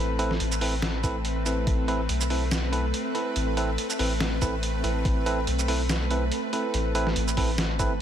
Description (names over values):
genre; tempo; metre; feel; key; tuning
deep dubstep; 142 BPM; 4/4; swing 56% on 16ths, half-time; A minor; A4 = 441 Hz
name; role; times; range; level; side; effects
bowed-like drone; sustained chords; 0.0-8.0 s; A3 to B4; -31 LUFS; equal; built-in reverb
bell-like tine electric piano; stabs; 0.0-7.9 s; C4 to B4; -30 LUFS; right 2 dB; dub echo
soft dub sub bass; bass; 0.0-8.0 s; A1 to B1; -28 LUFS; equal; none
trip hop sampler-style drum kit; drums; 0.2-7.9 s; hi-hat, shaker, snare drum; -31 LUFS; right 1 dB; none
electronic kick drum; drums; 1.0-1.8, 4.4-7.9 s; none; -28 LUFS; equal; overdrive
room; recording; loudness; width
light reverb, digital ambience; none; -24 LUFS; side -9 dB against mid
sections
0.0-8.0 A section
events
none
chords
0.0 Amadd9